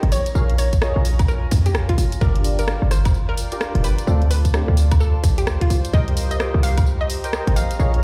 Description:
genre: UK garage, two-step garage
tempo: 129 BPM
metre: 4/4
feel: swing 62% on 16ths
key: unclear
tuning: A4 = 440 Hz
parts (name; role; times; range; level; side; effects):
- percussive organ stab; stabs; 0.0-8.0 s; A3 to G5; -31 LUFS; equal; ensemble chorus, delay
- short 808-style bass; bass; 0.0-8.0 s; D1 to F2; -21 LUFS; equal; none
- garage drum kit; drums; 0.0-8.0 s; hi-hat, rim click, tambourine, woodblock; -30 LUFS; equal; none
- warbly tape-like pad; texture; 0.0-8.0 s; Eb4 to Bb5; -35 LUFS; equal; chorus, built-in reverb, sidechain pumping
- hollow square pluck; melody; 0.1-7.9 s; F4 to F5; -31 LUFS; equal; analog chorus, delay
- electronic kick drum; drums; 0.7-6.8 s; none; -20 LUFS; equal; none
room: light reverb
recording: played on a big sound system in a bare room, large studio reverb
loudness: -19 LUFS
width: mono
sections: 0.0-8.0 A section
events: none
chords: 0.1 Bbm7; 2.2 Gm7; 4.1 Dm7; 5.9 Cm7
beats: | 0.35 0.82 1.28 1.75 | 2.21 2.68 3.14 3.61 | 4.07 4.54 5.00 5.47 | 5.93 6.40 6.87 7.33 | 7.79

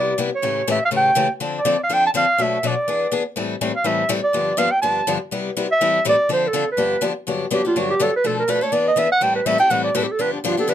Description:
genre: jazz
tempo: 246 BPM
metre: 4/4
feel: swing 55% on 8ths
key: G major from 7.3 s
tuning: A4 = 437 Hz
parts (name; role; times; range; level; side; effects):
- mellow clarinet; melody; 0.0-10.7 s; D4 to A5; -18 LUFS; right 2 dB; none
- picked steel-string acoustic guitar; accompaniment; 0.0-10.7 s; G2 to A4; -22 LUFS; left 4 dB; none
room: light reverb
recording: close, detailed microphones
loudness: -17 LUFS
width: side -10 dB against mid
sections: 0.0-7.3 A section; 7.3-10.7 B section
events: clarinet solo 7.3-10.7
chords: 0.4 A7; 1.4 Dm7; 2.4 Bm7; 2.9 E7; 3.4 Am7; 4.3 G7; 5.3 Cmaj7; 5.8 Am7; 6.3 Dm7; 6.8 G7; 7.3 Gmaj7; 8.2 Bm7b5; 8.7 E7; 9.2 Am7; 10.2 G7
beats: 0.20 | 0.44 0.68 0.93 1.17 | 1.42 1.66 1.90 2.15 | 2.39 2.63 2.88 3.12 | 3.37 3.61 3.85 4.10 | 4.34 4.58 4.83 5.07 | 5.31 5.56 5.80 6.04 | 6.29 6.53 6.77 7.02 | 7.26 7.51 7.75 7.99 | 8.24 8.48 8.73 8.97 | 9.22 9.46 9.71 9.95 | 10.20 10.44 10.69

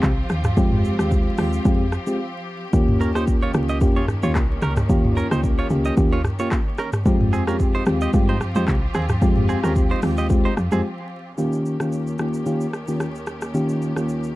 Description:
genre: afrobeats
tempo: 111 BPM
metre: 4/4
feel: swing 55% on 16ths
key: unclear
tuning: A4 = 440 Hz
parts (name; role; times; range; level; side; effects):
- mellow FM electric piano; accompaniment; 0.0-14.3 s; Eb3 to G4; -22 LUFS; left 1 dB; chorus
- rich studio string section; sustained chords; 0.0-14.4 s; Eb2 to G4; -32 LUFS; equal; none
- woody log drum bass; bass; 0.0-10.8 s; C2 to G2; -23 LUFS; equal; none
- afro-pop drum kit; drums; 0.0-14.3 s; handclaps, hi-hat, kick drum, rim click, shaker, toms; -21 LUFS; equal; none
- direct-recorded clean electric guitar; riff; 3.0-10.8 s; C4 to Eb5; -28 LUFS; right 4 dB; tape echo
room: light reverb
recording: dark, warm production, vinyl crackle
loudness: -18 LUFS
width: side -17 dB against mid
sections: 0.0-11.4 A section; 11.4-14.4 B section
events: break 2.2-2.7, 10.8-11.4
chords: 0.0 Fmadd9; 2.7 Eb7; 7.1 Fmadd9; 11.4 Eb7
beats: 0.03 | 0.57 1.11 1.65 2.19 | 2.73 3.27 3.81 4.35 | 4.89 5.43 5.98 6.52 | 7.06 7.60 8.14 8.68 | 9.22 9.76 10.30 10.84 | 11.38 11.92 12.46 13.00 | 13.54 14.08

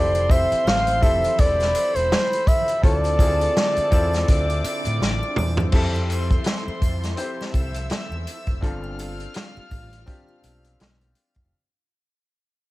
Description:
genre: lush 1970s-style soul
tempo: 83 BPM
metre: 4/4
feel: swing 58% on 16ths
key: unclear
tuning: A4 = 440 Hz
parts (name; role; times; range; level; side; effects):
- warm flugelhorn; melody; 0.0-5.0 s; C5 to F5; -21 LUFS; equal; none
- warm studio violin section; second line; 0.0-11.5 s; A4 to F6; -33 LUFS; equal; cassette tape
- warm grand piano; accompaniment; 0.0-11.5 s; C4 to C5; -30 LUFS; left 3 dB; cassette tape
- phased string machine; sustained chords; 0.0-11.5 s; D3 to A4; -37 LUFS; right 1 dB; ensemble chorus, phaser, cassette tape
- overdriven fingered electric bass; bass; 0.0-11.5 s; E1 to A2; -26 LUFS; equal; none
- vintage drum kit; drums; 0.1-11.5 s; crash cymbal, hi-hat, kick drum, snare drum, toms; -22 LUFS; equal; cassette tape
- triangle; percussion; 0.1-11.5 s; none; -44 LUFS; right 5 dB; none
room: little or no reverb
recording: home recording on cassette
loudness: -18 LUFS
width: side -18 dB against mid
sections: 0.0-5.7 A section; 5.7-11.5 B section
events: drum fill 5.0-5.7; fade-out 5.7-11.5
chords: 0.0 Fmaj7; 2.8 Dm7; 5.7 Fmaj7; 8.6 G7sus4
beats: 0.66 1.39 2.11 | 2.83 3.56 4.28 5.00 | 5.73 6.45 7.17 7.90 | 8.62 9.35 10.07 10.79

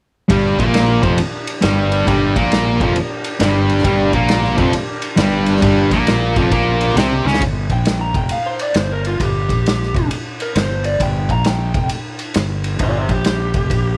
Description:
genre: blues rock power trio and southern rock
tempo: 134 BPM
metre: 4/4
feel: swing 65% on 8ths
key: G minor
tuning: A4 = 440 Hz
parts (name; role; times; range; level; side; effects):
- overdriven tonewheel organ; sustained chords; 0.3-7.4 s; D4 to Bb4; -32 LUFS; equal; none
- sludgy distorted guitar; riff; 0.3-7.4 s; F2 to C#4; -18 LUFS; equal; overdrive
- fuzz fingered electric bass; bass; 0.3-14.0 s; F1 to C#2; -22 LUFS; equal; overdrive
- vintage drum kit; drums; 0.3-13.8 s; kick drum, ride cymbal, snare drum; -22 LUFS; equal; none
- lead guitar through a small cranked amp; second line; 7.7-14.0 s; F4 to Bb5; -24 LUFS; equal; overdrive
room: light reverb, small room ambience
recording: none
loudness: -17 LUFS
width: mono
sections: 0.3-7.4 A section; 7.4-14.0 B section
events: drum fill 7.2; lead electric guitar solo 7.4-14.0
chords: 0.3 Gm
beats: | 0.29 0.74 1.18 1.62 | 2.07 2.51 2.96 3.40 | 3.85 4.29 4.74 5.18 | 5.63 6.07 6.52 6.96 | 7.41 7.86 8.30 8.75 | 9.20 9.65 10.10 10.55 | 11.00 11.45 11.89 12.34 | 12.79 13.24 13.69

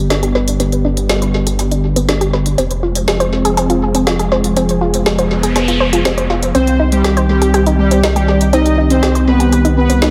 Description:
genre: melodic techno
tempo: 121 BPM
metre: 4/4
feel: straight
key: C harmonic minor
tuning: A4 = 438 Hz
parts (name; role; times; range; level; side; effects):
- warm analog pad; sustained chords; 0.0-10.1 s; D3 to Ab4; -21 LUFS; equal; chorus
- analog pluck; arpeggios; 0.0-10.1 s; B3 to C5; -20 LUFS; equal; chorus, dub echo
- round analog bass; bass; 0.0-10.1 s; F1 to C2; -19 LUFS; equal; tube saturation
- deep house drum kit; drums; 0.1-10.1 s; hi-hat, snare drum; -22 LUFS; equal; studio ambience, tape echo
- noise sweep; sound effects; 5.0-6.5 s; none; -26 LUFS; equal; none
- resonant sweep polysynth; melody; 6.5-10.0 s; G3 to Eb4; -17 LUFS; equal; chorus, cassette tape, dub echo
- soft supersaw; second line; 6.5-10.0 s; G4 to Eb5; -23 LUFS; equal; tape echo
room: moderate spring reverb, RT60 2.0 s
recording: echo-heavy mix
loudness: -14 LUFS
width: mono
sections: 0.0-10.1 A section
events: filter sweep on synth arpeggio sound 0.0-10.1; noise sweep 5.0-6.5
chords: 0.0 G; 2.6 Fm; 6.5 Cm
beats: 0.10 | 0.60 1.09 1.59 2.09 | 2.58 3.08 3.57 4.07 | 4.57 5.06 5.56 6.05 | 6.55 7.04 7.54 8.04 | 8.53 9.03 9.53 10.02

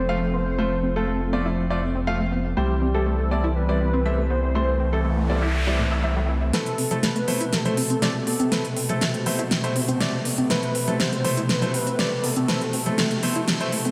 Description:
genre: progressive house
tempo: 121 BPM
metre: 4/4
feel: straight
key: A minor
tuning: A4 = 439 Hz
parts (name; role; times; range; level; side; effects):
- unison lead; melody; 0.0-12.9 s; G4 to C5; -32 LUFS; equal; analog delay
- warm analog pad; sustained chords; 0.0-13.9 s; B2 to C4; -30 LUFS; equal; chorus, tremolo
- round analog bass; bass; 0.0-13.9 s; F1 to C2; -28 LUFS; equal; high-pass filter
- tight sequenced synth; arpeggios; 0.1-13.9 s; A2 to A4; -32 LUFS; equal; chorus, analog delay
- bright baby grand piano; stabs; 0.1-13.7 s; G3 to F5; -32 LUFS; equal; analog delay
- noise sweep; sound effects; 5.0-6.5 s; none; -33 LUFS; equal; none
- big-room dance drum kit; drums; 6.5-13.9 s; hi-hat, snare drum; -28 LUFS; equal; none
- congas; percussion; 6.9-13.9 s; none; -31 LUFS; equal; none
room: wet lush hall reverb, RT60 1.8 s, digital ambience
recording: dreamy mix soaked in reverb, high-pass filter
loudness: -23 LUFS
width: mono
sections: 0.0-6.5 A section; 6.5-13.9 B section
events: filter sweep on synth arpeggio sound 0.0-6.5; filter sweep on analog synth pad 0.0-6.5; noise sweep 5.0-6.5; build-up 6.5-13.9; drum fill 6.5-13.9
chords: 0.0 F; 2.6 C; 6.5 Amadd9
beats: 0.09 | 0.58 1.08 1.58 2.07 | 2.57 3.06 3.56 4.06 | 4.55 5.05 5.54 6.04 | 6.54 7.03 7.53 8.02 | 8.52 9.02 9.51 10.01 | 10.50 11.00 11.49 11.99 | 12.49 12.98 13.48

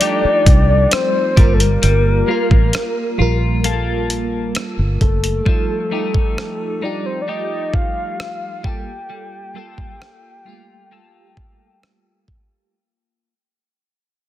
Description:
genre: contemporary R&B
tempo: 66 BPM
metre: 4/4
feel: straight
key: G minor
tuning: A4 = 440 Hz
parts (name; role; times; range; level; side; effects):
- soft octave-layered synth lead; melody; 0.0-11.8 s; A4 to G5; -21 LUFS; left 2 dB; chorus
- FM electric piano with tremolo; accompaniment; 0.0-12.8 s; G3 to Bb4; -24 LUFS; right 3 dB; phaser
- clean electric guitar; arpeggios; 0.0-13.3 s; F3 to A4; -26 LUFS; left 6 dB; analog chorus, tape echo
- dusty soul sampler-style drum kit; drums; 0.0-12.5 s; hi-hat, kick drum, rim click; -16 LUFS; equal; soft clipping on snare
- fingered electric bass; bass; 0.2-5.4 s; F#1 to C2; -16 LUFS; equal; none
room: little or no reverb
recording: dense, heavily limited modern master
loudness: -14 LUFS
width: side -13 dB against mid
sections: 0.0-12.7 A section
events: fade-out 1.1-12.7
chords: 0.0 F9; 1.4 Gm9; 5.5 F9; 8.6 Gm9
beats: 0.01 0.92 | 1.82 2.73 3.64 4.55 | 5.46 6.37 7.28 8.19 | 9.10 10.01 10.92 11.82

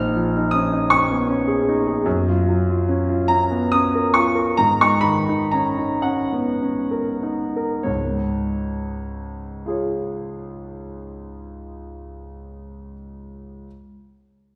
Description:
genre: classical, impressionist solo piano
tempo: 30-54 BPM (dotted quarters)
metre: 6/8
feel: rubato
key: Db mixolydian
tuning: A4 = 435 Hz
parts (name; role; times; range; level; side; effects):
- clear concert grand piano; solo; 0.0-13.7 s; Bb1 to F6; -22 LUFS; equal; none
room: wet recital hall reverb, RT60 1.6 s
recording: heard from further back in the room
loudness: -20 LUFS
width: mono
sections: 0.0-7.9 A section; 7.9-11.5 B section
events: slowing down 0.9-7.9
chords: 0.0 Db69/Bb; 2.1 Gbmaj7; 4.6 Ab9sus4; 7.9 Db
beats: 0.91 | 2.05 3.28 | 4.57 6.06 | 7.87 9.68

